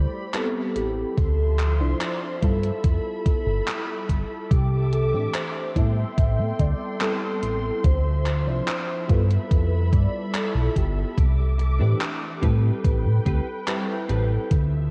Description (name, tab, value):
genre	vaporwave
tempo	72 BPM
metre	4/4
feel	straight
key	unclear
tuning	A4 = 437 Hz
part	warm velvety synth lead	melody	0.0-11.2 s	G4 to E5	-33 LUFS	equal	chorus, cassette tape, tape echo
part	FM electric piano with soft pad layer	accompaniment	0.0-14.5 s	E3 to C5	-33 LUFS	equal	phaser, subtle chorus, delay
part	muted studio string section	sustained chords	0.0-14.9 s	F3 to D6	-38 LUFS	equal	none
part	chorused synth bass	bass	0.0-14.9 s	G1 to A2	-24 LUFS	equal	none
part	gated 80s digital drum machine	drums	0.3-14.7 s	handclaps, hi-hat	-35 LUFS	equal	gated reverb
part	electronic kick drum	drums	1.2-14.7 s	none	-24 LUFS	equal	overdrive
part	clean electric guitar	riff	11.6-14.3 s	C4 to B4	-38 LUFS	equal	ensemble chorus, vintage 12-bit sampler grit, delay
room	moderate lush hall reverb, RT60 3.0 s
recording	dreamy mix soaked in reverb, cassette tape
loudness	-23 LUFS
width	mono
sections	0.0-14.9 A section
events	none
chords	0.0 Am9; 1.2 Dm9; 2.4 G13; 4.5 C69; 5.8 Am9; 7.8 Dm9; 9.1 G13; 11.2 C69; 12.4 Am9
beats	0.34 | 1.18 2.01 2.84 3.68 | 4.51 5.34 6.18 7.01 | 7.84 8.68 9.51 10.34 | 11.18 12.01 12.84 13.68 | 14.51